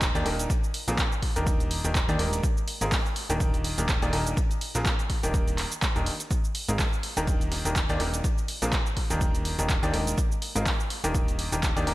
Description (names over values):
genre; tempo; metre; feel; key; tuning
piano house; 124 BPM; 4/4; swing 56% on 16ths; Eb major; A4 = 440 Hz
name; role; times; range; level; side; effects
clear grand piano; riff; 0.0-11.9 s; Ab2 to D5; -30 LUFS; equal; sidechain pumping, digital delay
plucky analog bass; bass; 0.0-11.9 s; Eb1 to Eb2; -30 LUFS; equal; tube saturation, sidechain pumping
breakbeat sampler-style drum kit; drums; 0.0-11.9 s; hi-hat, snare drum; -42 LUFS; right 1 dB; none
electronic kick drum; drums; 0.0-11.7 s; none; -27 LUFS; equal; none
punchy analog drum machine; drums; 0.0-11.9 s; handclaps, hi-hat, shaker; -31 LUFS; right 1 dB; gated reverb
room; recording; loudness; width
light reverb, digital ambience; bright 1980s-style digital production; -24 LUFS; side -17 dB against mid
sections
0.0-11.9 A section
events
none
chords
0.5 Bb9; 1.5 Ebmaj7; 2.4 Ab69; 3.4 Ebmaj7; 4.4 Bb9; 5.3 Ebmaj7; 6.3 Ab69; 7.3 Ebmaj7; 8.2 Bb9; 9.2 Ebmaj7; 10.2 Ab69; 11.1 Ebmaj7